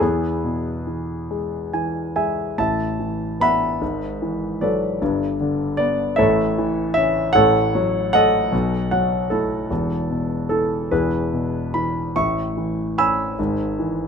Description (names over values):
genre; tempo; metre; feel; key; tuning
classical, lyrical solo piano; 46-51 BPM (dotted quarters); 6/8; rubato; A major; A4 = 438 Hz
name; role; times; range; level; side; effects
warm concert grand piano; solo; 0.0-14.1 s; E1 to E6; -19 LUFS; equal; none
room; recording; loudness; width
light reverb; close, detailed microphones; -19 LUFS; side -6 dB against mid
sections
0.0-2.6 A section; 2.6-14.1 B section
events
grand piano fill 1.3-2.6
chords
0.0 E; 2.6 Asus2; 3.8 Eadd9/G#; 5.0 Gadd9; 6.2 A; 7.4 F#m/A; 8.5 B7; 9.7 E5; 10.9 E; 12.2 Aadd9; 13.4 E/G#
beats
| 0.01 1.31 | 2.59 3.82 | 5.01 6.18 | 7.35 8.53 | 9.70 10.91 | 12.16 13.38